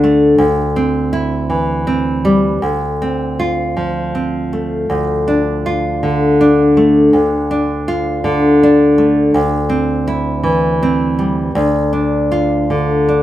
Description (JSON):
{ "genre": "folk, solo fingerstyle acoustic guitar", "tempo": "54 BPM (dotted quarters)", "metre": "6/8", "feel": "rubato", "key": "D minor", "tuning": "A4 = 439 Hz", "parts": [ { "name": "nylon-string guitar", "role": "solo", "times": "0.0-13.2 s", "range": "D2 to F4", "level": "-12 LUFS", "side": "equal", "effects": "none" } ], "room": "moderate large studio reverb, RT60 1.2 s", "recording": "band playing live in one room", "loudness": "-12 LUFS", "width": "side -13 dB against mid", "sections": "0.0-13.2 A section", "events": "none", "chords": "0.4 C/D; 2.6 F/D; 4.9 Dm; 9.3 C/D; 11.5 Dm", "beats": "| 0.37 1.48 | 2.61 3.75 | 4.88 6.01 | 7.13 8.24 | 9.34 10.43 | 11.54 12.68" }